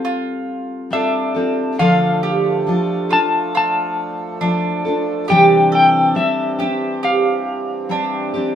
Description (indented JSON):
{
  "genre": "acoustic folk duo or small band",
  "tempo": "69 BPM",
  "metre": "4/4",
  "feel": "straight",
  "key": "unclear",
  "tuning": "A4 = 444 Hz",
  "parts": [
    { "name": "picked steel-string acoustic guitar", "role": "accompaniment", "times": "0.0-8.6 s", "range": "C3 to A4", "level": "-20 LUFS", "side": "left 2 dB", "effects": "none" },
    { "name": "mandolin", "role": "arpeggios", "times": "0.0-8.6 s", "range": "D4 to A4", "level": "-21 LUFS", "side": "right 5 dB", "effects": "none" },
    { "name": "clean electric guitar", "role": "melody", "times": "0.9-8.3 s", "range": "E5 to A5", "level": "-17 LUFS", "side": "left 2 dB", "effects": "tremolo" },
    { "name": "pedal harmonium", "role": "sustained chords", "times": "1.8-8.6 s", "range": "E3 to A4", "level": "-28 LUFS", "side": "equal", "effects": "none" }
  ],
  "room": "moderate studio reverb, RT60 0.6 s",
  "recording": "minimal, uncompressed stereo recording",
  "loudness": "-15 LUFS",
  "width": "side -9 dB against mid",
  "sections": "0.0-8.6 A section",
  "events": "none",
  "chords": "0.0 Fadd9; 1.8 Dm; 5.3 Cadd9"
}